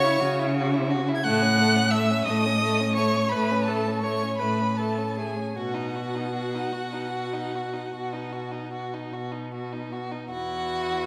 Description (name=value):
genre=classical, slow romantic movement for string quartet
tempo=49-60 BPM (dotted quarters)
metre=12/8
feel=rubato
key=unclear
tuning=A4 = 440 Hz
part: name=warm violin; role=melody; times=0.0-11.1 s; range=F#5 to G#6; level=-33 LUFS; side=equal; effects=none
part: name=rich violin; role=second line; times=0.0-11.1 s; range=A3 to F#4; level=-33 LUFS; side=equal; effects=none
part: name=rich viola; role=accompaniment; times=0.0-11.1 s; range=E4 to F#5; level=-32 LUFS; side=equal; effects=none
part: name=rich cello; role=bass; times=0.0-11.1 s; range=E2 to C#3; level=-30 LUFS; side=equal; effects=none
room=wet recital hall reverb, RT60 1.7 s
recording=none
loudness=-26 LUFS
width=mono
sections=0.0-10.3 A section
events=none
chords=0.0 F#5/C#; 1.2 F#m/A; 5.6 B; 10.3 N.C.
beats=0.20 | 1.23 2.26 3.32 4.40 | 5.57 6.74 7.93 9.12 | 10.29